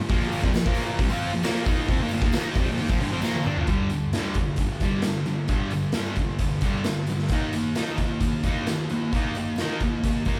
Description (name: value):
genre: garage rock duo or trio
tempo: 132 BPM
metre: 4/4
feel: straight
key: G minor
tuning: A4 = 437 Hz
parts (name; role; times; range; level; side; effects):
- thick fuzz guitar; riff; 0.0-10.4 s; G2 to F4; -28 LUFS; equal; distortion
- raw garage drum kit; drums; 0.1-10.4 s; hi-hat, kick drum, snare drum, toms; -28 LUFS; equal; none
- tambourine; percussion; 0.1-10.4 s; none; -49 LUFS; equal; none
room: light reverb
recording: band playing live in one room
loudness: -25 LUFS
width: mono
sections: 0.0-3.7 A section; 3.7-10.4 B section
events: drum fill 3.2-3.7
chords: 0.1 Bb5; 3.7 G5; 7.3 Eb5